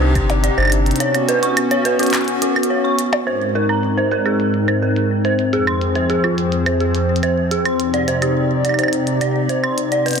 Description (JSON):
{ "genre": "IDM", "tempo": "106 BPM", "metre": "4/4", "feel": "straight", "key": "unclear", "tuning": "A4 = 440 Hz", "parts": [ { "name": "hollow soft pad", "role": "sustained chords", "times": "0.0-10.2 s", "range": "F2 to F#5", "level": "-18 LUFS", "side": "left 2 dB", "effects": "chorus, sidechain pumping" }, { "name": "dark detuned synth bell", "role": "arpeggios", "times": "0.0-10.2 s", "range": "F4 to C#6", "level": "-20 LUFS", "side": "right 3 dB", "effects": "chorus, low-pass filter, tape echo" }, { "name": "round analog bass", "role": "bass", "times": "0.0-0.9 s", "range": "G1 to C2", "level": "-17 LUFS", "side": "equal", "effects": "none" }, { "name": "glitchy drum kit", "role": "drums", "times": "0.2-10.2 s", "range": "claves, handclaps, hi-hat, percussion blips", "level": "-23 LUFS", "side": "right 2 dB", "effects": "overdrive, low-pass filter on hats, studio ambience, low-pass filter on perc, low-pass filter on snare, ping-pong delay" } ], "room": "moderate huge ambient reverb, RT60 3.9 s", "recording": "dense, heavily limited modern master", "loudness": "-15 LUFS", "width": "side -6 dB against mid", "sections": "0.0-3.3 A section; 3.3-10.2 B section", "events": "filter sweep on drum 3.3-10.2", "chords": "0.0 Cmadd9; 1.0 Bsus2; 3.3 Abadd9; 5.5 Fm; 7.8 Cmadd9" }